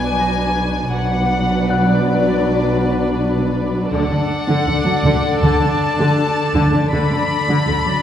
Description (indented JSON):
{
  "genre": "cinematic, suspense film score",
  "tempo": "80 BPM",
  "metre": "4/4",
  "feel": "straight",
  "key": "unclear",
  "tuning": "A4 = 441 Hz",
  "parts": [
    { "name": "warm chamber violin section", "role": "melody", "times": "0.0-8.0 s", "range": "D5 to Cb6", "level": "-21 LUFS", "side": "left 3 dB", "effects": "none" },
    { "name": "clear studio violin section", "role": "second line", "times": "0.0-8.0 s", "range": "A4 to D5", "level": "-25 LUFS", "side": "left 2 dB", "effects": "none" },
    { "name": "warm studio viola section", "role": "accompaniment", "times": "0.0-8.0 s", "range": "D3 to D4", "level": "-20 LUFS", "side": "equal", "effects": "none" },
    { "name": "dark studio cello section", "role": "bass", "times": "0.0-7.9 s", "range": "B2 to D3", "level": "-22 LUFS", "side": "right 1 dB", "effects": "none" },
    { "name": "warm studio double bass section", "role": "bass", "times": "0.0-7.8 s", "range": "B1 to D2", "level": "-22 LUFS", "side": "right 1 dB", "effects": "none" },
    { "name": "concert harp", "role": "texture", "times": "0.2-7.9 s", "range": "D5 to Bb6", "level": "-28 LUFS", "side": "left 3 dB", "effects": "none" }
  ],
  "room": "wet scoring stage reverb, RT60 1.6 s",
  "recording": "heard from further back in the room",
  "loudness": "-15 LUFS",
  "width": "side -10 dB against mid",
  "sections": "0.0-8.0 A section",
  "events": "none",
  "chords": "0.0 Bm; 3.9 D",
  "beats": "0.17 | 0.92 1.67 2.42 3.17 | 3.92 4.67 5.42 6.17 | 6.92 7.67"
}